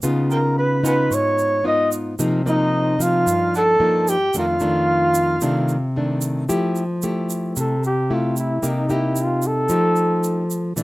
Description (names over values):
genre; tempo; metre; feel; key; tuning
bossa nova; 112 BPM; 4/4; straight; F major from 6.5 s; A4 = 440 Hz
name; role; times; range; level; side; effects
nylon-string guitar; accompaniment; 0.0-10.8 s; F2 to G4; -20 LUFS; left 1 dB; none
egg shaker; percussion; 0.0-10.8 s; none; -31 LUFS; right 6 dB; none
dark flugelhorn; melody; 0.3-10.8 s; Eb4 to Eb5; -19 LUFS; equal; none
overdriven harmonica; second line; 0.3-5.9 s; Bb4 to Eb6; -28 LUFS; right 3 dB; none
room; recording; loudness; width
moderate studio ambience, RT60 0.5 s; rough home demo mix; -17 LUFS; side -19 dB against mid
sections
0.0-6.5 A section; 6.5-10.8 B section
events
flugelhorn solo 6.5-10.8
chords
0.0 Db9; 2.2 Cm7; 4.3 F6; 6.5 Fmaj9; 8.6 Cm7; 9.7 F9